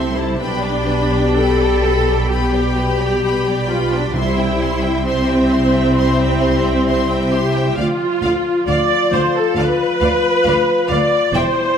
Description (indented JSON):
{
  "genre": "classical, slow romantic movement for symphony orchestra",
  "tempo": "66 BPM",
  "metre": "4/4",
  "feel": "rubato",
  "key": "unclear",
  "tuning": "A4 = 441 Hz",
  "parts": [
    { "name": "bright symphonic violin section", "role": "melody", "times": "0.0-11.4 s", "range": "F5 to C6", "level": "-28 LUFS", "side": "left 4 dB", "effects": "none" },
    { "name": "clear symphonic violin section", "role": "second line", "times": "0.0-11.4 s", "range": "A4 to B5", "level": "-25 LUFS", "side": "left 2 dB", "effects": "none" },
    { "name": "clear symphonic viola section", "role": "accompaniment", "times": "0.0-11.8 s", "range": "C4 to D5", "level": "-18 LUFS", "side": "equal", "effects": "none" },
    { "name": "mellow French horn section", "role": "sustained chords", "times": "0.0-11.8 s", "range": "F3 to G4", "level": "-22 LUFS", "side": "left 5 dB", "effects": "none" },
    { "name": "rich symphonic cello section", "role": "bass", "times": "0.0-11.4 s", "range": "D2 to C3", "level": "-23 LUFS", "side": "right 2 dB", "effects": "none" },
    { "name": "rich symphonic double bass section", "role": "bass", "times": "0.0-11.4 s", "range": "E1 to D2", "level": "-22 LUFS", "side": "right 2 dB", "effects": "none" },
    { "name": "timpani", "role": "percussion", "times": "4.1-5.5 s", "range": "C3", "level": "-28 LUFS", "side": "right 1 dB", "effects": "none" }
  ],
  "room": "moderate scoring stage reverb, RT60 1.8 s",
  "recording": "none",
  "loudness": "-14 LUFS",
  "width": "side -8 dB against mid",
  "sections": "0.0-11.8 A section",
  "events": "none",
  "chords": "0.4 G/B; 4.1 C; 7.8 Bdim/D",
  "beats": "| 0.39 1.38 2.31 3.23 | 4.14 5.05 5.97 6.87 | 7.77 8.68 9.57 10.46 | 11.34"
}